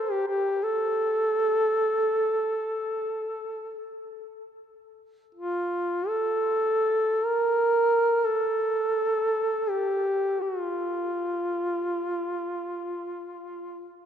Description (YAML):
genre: caucasian folk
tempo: free time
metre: none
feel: none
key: unclear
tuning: A4 = 440 Hz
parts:
  - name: mellow duduk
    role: solo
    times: 0.0-13.9 s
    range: F4 to Bb4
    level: -24 LUFS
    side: equal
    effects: none
room: moderate cathedral reverb, RT60 5.7 s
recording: minimal, uncompressed stereo recording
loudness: -24 LUFS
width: side -8 dB against mid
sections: 0.0-14.1 A section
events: none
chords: none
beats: free time